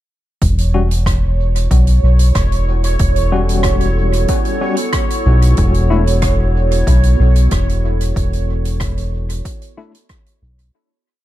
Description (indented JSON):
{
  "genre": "ambient dub",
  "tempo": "93 BPM",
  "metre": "4/4",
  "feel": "straight",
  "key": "E dorian",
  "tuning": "A4 = 440 Hz",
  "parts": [
    { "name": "warbly tape-like pad", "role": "sustained chords", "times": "1.6-10.7 s", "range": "B3 to C#5", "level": "-25 LUFS", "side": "equal", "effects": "chorus, built-in reverb" },
    { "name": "round analog bass", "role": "bass", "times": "0.4-10.7 s", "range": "E1 to B1", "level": "-13 LUFS", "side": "equal", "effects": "none" },
    { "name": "electronic kick drum", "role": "drums", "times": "0.4-10.2 s", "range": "none", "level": "-19 LUFS", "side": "equal", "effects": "none" },
    { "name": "soft-mallet drum kit", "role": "drums", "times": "0.4-10.7 s", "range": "hi-hat, rim click", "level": "-27 LUFS", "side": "right 2 dB", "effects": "dub echo" },
    { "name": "bubbling stepped-filter texture", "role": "texture", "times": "0.4-10.8 s", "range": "C#5", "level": "-25 LUFS", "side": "right 5 dB", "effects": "chorus, built-in reverb" },
    { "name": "mellow tine electric piano", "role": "stabs", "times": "0.7-9.9 s", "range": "G3 to F#4", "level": "-22 LUFS", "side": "left 4 dB", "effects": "medium tremolo, dub echo" }
  ],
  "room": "small room ambience",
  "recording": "echo-heavy mix",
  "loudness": "-12 LUFS",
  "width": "side -14 dB against mid",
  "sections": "0.4-10.7 groove",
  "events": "fade-in on ambient pad 0.4-10.7; fade-out 7.3-10.7",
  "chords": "0.4 Em69; 5.6 Dsus2/E (rootless)"
}